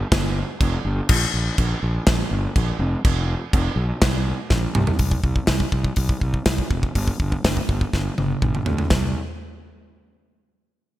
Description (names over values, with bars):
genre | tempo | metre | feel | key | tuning
heavy metal | 123 BPM | 4/4 | straight | unclear | A4 = 435 Hz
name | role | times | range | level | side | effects
fuzz fingered electric bass | bass | 0.1-9.1 s | F1 to D2 | -23 LUFS | equal | overdrive
modern studio drum kit | drums | 0.1-9.0 s | china cymbal, crash cymbal, hi-hat, kick drum, snare drum, toms | -21 LUFS | equal | none
room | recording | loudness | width
light reverb | bright 1980s-style digital production | -19 LUFS | side -15 dB against mid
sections
0.0-5.0 A section; 5.0-8.9 B section; 8.9-10.9 C section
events
half time 0.0-5.0; drum fill 4.5-5.0, 7.9-8.9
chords
none